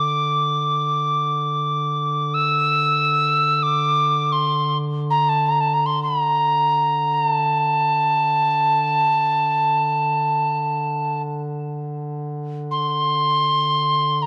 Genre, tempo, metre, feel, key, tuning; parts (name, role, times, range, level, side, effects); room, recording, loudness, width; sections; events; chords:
caucasian folk, Caucasian lament; free time; A4 = 441 Hz
breathy mellow soprano recorder; melody; 0.0-14.3 s; A5 to E6; -20 LUFS; equal
mellow duduk; drone; 0.0-14.3 s; D3; -28 LUFS; equal
moderate church reverb, RT60 3.0 s; dark, warm production; -20 LUFS; mono
0.0-14.3 A section